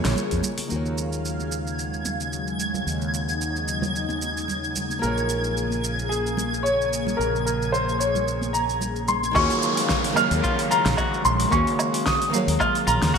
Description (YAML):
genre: sunset chillout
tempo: 111 BPM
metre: 4/4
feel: swing 55% on 16ths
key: Eb minor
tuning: A4 = 440 Hz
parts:
  - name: warm baby grand piano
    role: melody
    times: 0.0-0.4, 5.0-13.2 s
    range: Ab4 to F6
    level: -24 LUFS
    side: equal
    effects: wide subtle chorus, digital delay
  - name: nylon-string guitar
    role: accompaniment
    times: 0.0-13.2 s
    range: Eb3 to F5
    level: -28 LUFS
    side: equal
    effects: auto-pan, digital delay
  - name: airy breathy pad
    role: sustained chords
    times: 0.0-13.2 s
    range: Db3 to F5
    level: -31 LUFS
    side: left 1 dB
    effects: chorus, phaser
  - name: deep house drum kit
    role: drums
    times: 0.0-13.2 s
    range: hi-hat, shaker, snare drum, woodblock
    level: -29 LUFS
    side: right 1 dB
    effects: overdrive, gated reverb
  - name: mellow fretless electric bass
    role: bass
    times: 0.1-13.1 s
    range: Bb1 to F2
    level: -28 LUFS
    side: equal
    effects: none
  - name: congas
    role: percussion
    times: 0.2-9.3 s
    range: none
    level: -34 LUFS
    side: right 4 dB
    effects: none
  - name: electronic kick drum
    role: drums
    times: 0.3-0.4, 9.4-13.2 s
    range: none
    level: -29 LUFS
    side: equal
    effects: none
  - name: twinkling granular texture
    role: texture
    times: 1.4-9.4 s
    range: Ab6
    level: -32 LUFS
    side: right 1 dB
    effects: built-in reverb, ensemble chorus
  - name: clean electric guitar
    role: arpeggios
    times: 9.4-13.2 s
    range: Db4 to Gb4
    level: -31 LUFS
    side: left 2 dB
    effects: vintage 12-bit sampler grit, digital delay
  - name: downlifter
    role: sound effects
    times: 9.4-13.2 s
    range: none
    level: -30 LUFS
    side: equal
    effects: none
room: moderate plate reverb, RT60 2.8 s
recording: bright 1980s-style digital production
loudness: -21 LUFS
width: side -6 dB against mid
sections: 0.7-9.4 A section; 9.4-13.2 B section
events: none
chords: 0.0 Bbm7; 0.7 Ebm11; 5.0 Bbm7; 9.4 Ebm11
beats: 0.17 | 0.71 1.25 1.79 2.33 | 2.87 3.41 3.95 4.49 | 5.03 5.58 6.12 6.66 | 7.20 7.74 8.28 8.82 | 9.36 9.90 10.44 10.98 | 11.52 12.06 12.60 13.14